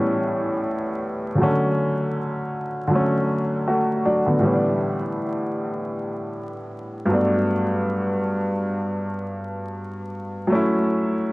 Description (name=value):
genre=hip hop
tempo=79 BPM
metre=4/4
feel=swing 56% on 16ths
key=unclear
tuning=A4 = 442 Hz
part: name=warm upright piano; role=solo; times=0.0-11.3 s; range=G2 to F#4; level=-21 LUFS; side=equal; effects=cassette tape, low-pass filter, tape echo
room=light reverb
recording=worn, warbling old tape, cassette tape, vinyl crackle, warbly pitch drift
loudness=-20 LUFS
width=side -22 dB against mid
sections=0.0-4.4 A section; 4.4-11.3 B section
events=none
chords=0.0 A7; 1.4 Dmaj7; 4.4 A7sus4; 7.1 Gmaj7; 10.5 F#m7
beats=0.63 | 1.39 2.15 2.90 3.67 | 4.42 5.18 5.94 6.70 | 7.46 8.22 8.98 9.74 | 10.50 11.26